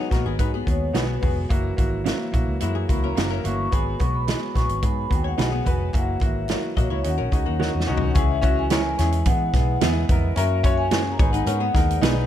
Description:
uptempo 1960s-style soul; 108 BPM; 4/4; straight; G# minor; A4 = 440 Hz
vibraphone with soft mallets; melody; 0.0-12.3 s; B4 to C#6; -29 LUFS; left 2 dB
clear upright piano; accompaniment; 0.0-12.2 s; A#3 to C#5; -28 LUFS; left 1 dB
percussive tonewheel organ; sustained chords; 0.0-12.3 s; D#3 to D#4; -34 LUFS; right 2 dB; overdrive, stopped rotary speaker
archtop guitar, miked and amplified; riff; 0.0-12.3 s; F#3 to D#5; -31 LUFS; left 8 dB
vintage muted fingered electric bass; bass; 0.1-12.2 s; E#1 to E3; -25 LUFS; equal
natural country drum kit; drums; 0.1-12.2 s; hi-hat, kick drum, snare drum, toms; -23 LUFS; equal
congas; percussion; 0.1-12.2 s; -34 LUFS; right 4 dB
semi-hollow electric guitar; stabs; 0.9-12.1 s; B3 to C#5; -28 LUFS; right 10 dB
little or no reverb; dark, warm production; -20 LUFS; side -11 dB against mid
0.0-8.2 A section; 8.2-12.3 B section
drum fill 7.6-8.2
0.0 G#m7; 1.5 F#7; 3.7 G#m7; 5.9 F#7; 7.0 D#m7; 8.2 C#m; 9.3 E; 10.4 F#; 11.2 G#m
0.39 0.95 | 1.50 2.06 2.61 3.17 | 3.72 4.28 4.83 5.39 | 5.94 6.50 7.05 7.60 | 8.16 8.71 9.26 9.81 | 10.37 10.92 11.47 12.02

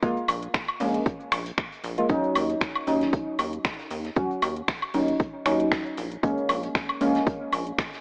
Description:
deep house; 116 BPM; 4/4; swing 55% on 16ths; Eb minor; A4 = 445 Hz
deep mellow chord stab; stabs; 0.0-8.0 s; Gb3 to Gb4; -29 LUFS; equal; chorus, sidechain pumping, tape echo
electronic kick drum; drums; 0.0-7.9 s; -30 LUFS; equal
house drum kit; drums; 0.0-8.0 s; finger snaps, hi-hat, shaker, woodblock; -31 LUFS; equal
unplugged drum kit; drums; 0.0-8.0 s; hi-hat, snare drum; -45 LUFS; equal; high-pass filter on hats, high-pass filter on snare, high-pass filter on room
rubbery square bass; bass; 0.3-7.7 s; Bb1 to Eb2; -35 LUFS; equal; sidechain pumping
light reverb; AM radio sound; -26 LUFS; mono
0.0-8.0 A section
0.0 Bbm7; 2.1 Ebm7; 6.0 Bbm7
| 0.03 0.54 1.06 1.58 | 2.10 2.61 3.13 3.65 | 4.16 4.68 5.20 5.72 | 6.23 6.75 7.27 7.79

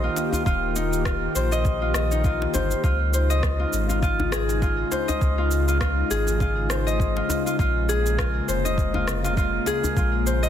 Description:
organic downtempo; 101 BPM; 4/4; swing 56% on 16ths; A4 = 441 Hz
airy breathy pad; sustained chords; 0.0-10.5 s; Db3 to G4; -29 LUFS; left 1 dB; chorus, sidechain pumping
Celtic harp; arpeggios; 0.0-10.5 s; Eb4 to Eb5; -25 LUFS; left 2 dB; digital delay
warm sub bass; bass; 0.0-10.5 s; Eb1 to Db2; -25 LUFS; equal
electronic cabasa and rim click; drums; 0.2-10.5 s; -32 LUFS; equal; soft clipping on snare
djembe; percussion; 0.2-10.4 s; -33 LUFS; left 2 dB
electronic kick drum; drums; 0.5-10.1 s; -24 LUFS; equal
light reverb, digital ambience; dense, heavily limited modern master; -20 LUFS; side -10 dB against mid
0.0-10.5 A section
0.0 Ebadd9; 2.8 Dbmaj7; 7.6 Bbm7
| 0.46 1.06 1.65 2.24 | 2.84 3.43 4.03 4.62 | 5.21 5.81 6.40 7.00 | 7.59 8.19 8.78 9.37 | 9.97

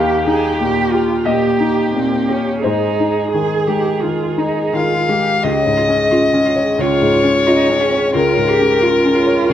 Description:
neoclassical piano and strings; 88 BPM; 4/4; rubato; A4 = 443 Hz
warm cello; second line; 0.0-9.5 s; C4 to Ab4; -19 LUFS; right 5 dB
felt-muted upright piano; accompaniment; 0.0-9.5 s; Db2 to F5; -17 LUFS; left 3 dB
rich viola; accompaniment; 0.0-9.5 s; F4 to Ab4; -25 LUFS; right 3 dB
dark violin; melody; 4.7-9.5 s; Bb4 to F5; -15 LUFS; left 2 dB
marimba with medium mallets; arpeggios; 5.4-9.5 s; Db4 to Db5; -20 LUFS; right 2 dB; slapback echo
moderate large studio reverb, RT60 1.4 s; -13 LUFS; side -10 dB against mid
0.0-5.4 A section; 5.4-9.5 A section
0.0 Eb; 2.6 Ab; 5.4 Db
0.60 1.27 1.95 | 2.64 3.34 4.03 4.74 | 5.44 6.12 6.80 7.47 | 8.14 8.81 9.49

